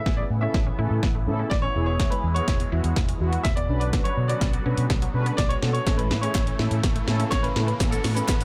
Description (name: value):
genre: dance-pop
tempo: 124 BPM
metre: 4/4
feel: straight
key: A major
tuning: A4 = 438 Hz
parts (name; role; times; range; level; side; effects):
- warm baby grand piano; melody; 0.0-8.4 s; A4 to E5; -32 LUFS; equal; dub echo
- filtered supersaw swell; sustained chords; 0.0-8.4 s; B2 to F#4; -37 LUFS; equal; sidechain pumping
- riser; sound effects; 3.2-8.4 s; none; -41 LUFS; equal; none
- mellow synth brass; accompaniment; 0.1-8.3 s; B3 to B4; -34 LUFS; equal; chorus, sidechain pumping
- unison pluck; arpeggios; 0.1-8.4 s; D3 to E4; -41 LUFS; equal; none
- vintage muted fingered electric bass; bass; 0.1-8.4 s; E1 to B2; -28 LUFS; equal; sidechain pumping
- house drum kit; drums; 0.1-8.4 s; hi-hat, kick drum, shaker, snare drum; -27 LUFS; equal; none
- group handclap; percussion; 6.3-8.4 s; none; -40 LUFS; equal; none
room: little or no reverb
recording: none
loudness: -24 LUFS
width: mono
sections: 0.0-8.4 A section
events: build-up 0.0-8.4; drum fill 0.0-8.4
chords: 0.0 A; 1.8 E; 3.7 Bmadd9; 5.9 A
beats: | 0.06 0.55 1.03 1.51 | 2.00 2.48 2.96 3.45 | 3.93 4.42 4.90 5.38 | 5.87 6.35 6.83 7.32 | 7.80 8.29